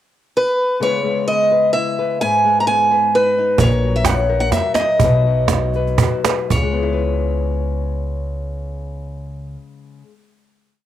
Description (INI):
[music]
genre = acoustic folk duo or small band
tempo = 115-129 BPM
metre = 3/4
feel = straight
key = C# dorian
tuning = A4 = 445 Hz
[part]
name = picked old ladder-braced acoustic guitar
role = melody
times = 0.4-9.6 s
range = B4 to A#5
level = -17 LUFS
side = right 1 dB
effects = cassette tape, plate reverb
[part]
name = nylon-string guitar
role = accompaniment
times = 0.8-10.4 s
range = G#2 to B4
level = -23 LUFS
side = left 7 dB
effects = cassette tape, plate reverb
[part]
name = upright bass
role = bass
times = 3.6-9.5 s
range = A#1 to C#2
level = -21 LUFS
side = equal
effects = none
[part]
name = cajon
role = percussion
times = 3.6-6.7 s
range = none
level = -18 LUFS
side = right 4 dB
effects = none
[sound]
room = moderate studio ambience, RT60 0.5 s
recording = home recording on cassette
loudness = -15 LUFS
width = side -12 dB against mid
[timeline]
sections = 0.0-0.8 pickup bar; 0.8-6.5 verse; 6.5-9.6 final chord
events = slowing down 3.6-6.5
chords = 0.0 N.C.; 0.8 C#m7; 2.2 G#m; 3.6 F#/A#; 5.0 B; 6.5 C#m7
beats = 0.34 | 0.80 1.27 1.74 | 2.20 2.67 3.13 | 3.59 4.06 4.53 | 5.00 5.49 5.99 | 6.50 7.02 7.54 | 8.06 8.58 9.10